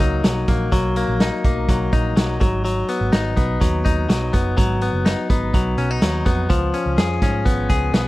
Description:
jangly indie pop; 125 BPM; 4/4; straight; A4 = 441 Hz
direct-recorded clean electric guitar; arpeggios; 0.0-8.1 s; E#3 to G#4; -21 LUFS; left 2 dB; slapback echo
vintage muted picked electric bass; bass; 0.0-8.1 s; F#1 to G#2; -22 LUFS; right 1 dB
raw garage drum kit; drums; 0.0-8.1 s; hi-hat, kick drum, snare drum; -20 LUFS; equal
little or no reverb; dry, close 1970s-style studio recording; -17 LUFS; side -18 dB against mid
0.0-8.1 A section
0.0 Bmaj7; 2.4 G#m7; 6.5 C#7

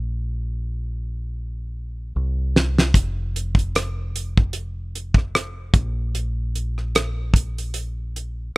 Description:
R&B, neo-soul; 75 BPM; 4/4; swing 55% on 16ths; A4 = 439 Hz
deep dub fingered electric bass; bass; 0.0-8.5 s; F1 to C2; -26 LUFS; equal
damped 70s drum kit; drums; 2.6-8.4 s; hi-hat, kick drum, rim click, snare drum; -17 LUFS; equal
little or no reverb; rough home demo mix; -21 LUFS; side -24 dB against mid
0.0-8.6 A section
drum fill 1.3-2.9; break 7.7-8.6

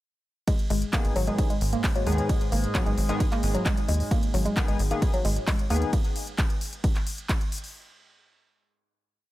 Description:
driving peak-time techno; 132 BPM; 4/4; straight; G# minor; A4 = 436 Hz
woody wave-folded pluck; riff; 0.5-5.8 s; F#3 to A#3; -30 LUFS; equal; chorus, overdrive, sidechain pumping, tape echo
analog drone; drone; 0.8-6.0 s; G#2 to G#3; -34 LUFS; equal; chorus, sidechain pumping
electronic kick drum; drums; 0.5-7.4 s; -26 LUFS; equal
techno drum kit; drums; 0.5-7.7 s; handclaps, hi-hat, ride cymbal; -34 LUFS; equal
tight sequencer bass; bass; 0.7-5.8 s; G#1 to D#2; -26 LUFS; equal; sidechain pumping
sync-sweep polysynth; stabs; 0.9-5.9 s; D#3 to G#4; -34 LUFS; left 3 dB; chorus, sidechain pumping, tape echo
digital ambience; -23 LUFS; side -16 dB against mid
0.5-7.7 drop
drop 0.5-7.7
0.5 G#m

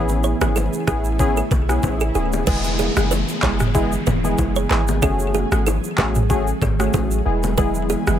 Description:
afrobeats; 94 BPM; 4/4; swing 55% on 16ths; E major; A4 = 436 Hz
warm analog keys; accompaniment; 0.0-8.2 s; G#3 to G#4; -23 LUFS; left 1 dB; chorus
ethereal airy pad; sustained chords; 0.0-8.2 s; C#3 to G#5; -27 LUFS; right 2 dB; ensemble chorus, built-in reverb, sidechain pumping
warm 808-style bass; bass; 0.0-8.2 s; D1 to B1; -22 LUFS; equal
swell and downlifter; sound effects; 0.8-7.6 s; -31 LUFS; equal
afro-pop drum kit; drums; 0.1-8.2 s; crash cymbal, handclaps, kick drum, rim click, shaker, toms; -22 LUFS; equal; overdrive
bongos and congas; percussion; 0.1-8.1 s; -29 LUFS; left 5 dB
kalimba; riff; 0.2-8.0 s; G#4 to C#5; -27 LUFS; right 8 dB; ping-pong delay
light reverb; -17 LUFS; side -10 dB against mid
0.0-2.5 A section; 2.5-8.2 B section
swell 0.8-2.5
0.0 Amaj7; 2.5 E; 5.0 F#madd9; 7.3 E

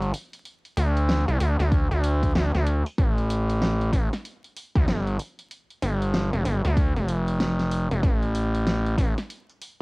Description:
glitch hop; 95 BPM; 4/4; swing 62% on 16ths; A4 = 440 Hz
gritty driven synth bass; bass; 0.0-9.1 s; F1 to D2; -22 LUFS; equal
pop drum kit; drums; 0.0-9.8 s; hi-hat, snare drum; -30 LUFS; equal; cassette tape
electronic kick drum; drums; 1.7-9.1 s; -22 LUFS; equal; cassette tape
digital ambience; home recording on cassette, vinyl crackle; -22 LUFS; side -32 dB against mid
0.0-9.8 A section

